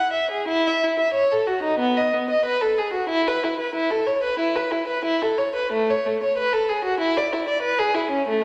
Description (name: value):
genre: classical, baroque-style suite movement for unaccompanied violin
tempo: 93 BPM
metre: 4/4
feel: rubato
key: E major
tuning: A4 = 440 Hz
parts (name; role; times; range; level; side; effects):
- warm violin; solo; 0.0-8.4 s; A3 to F#5; -22 LUFS; equal; none
room: wet recital hall reverb, RT60 1.6 s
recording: none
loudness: -22 LUFS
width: mono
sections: 0.5-8.4 A section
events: none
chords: none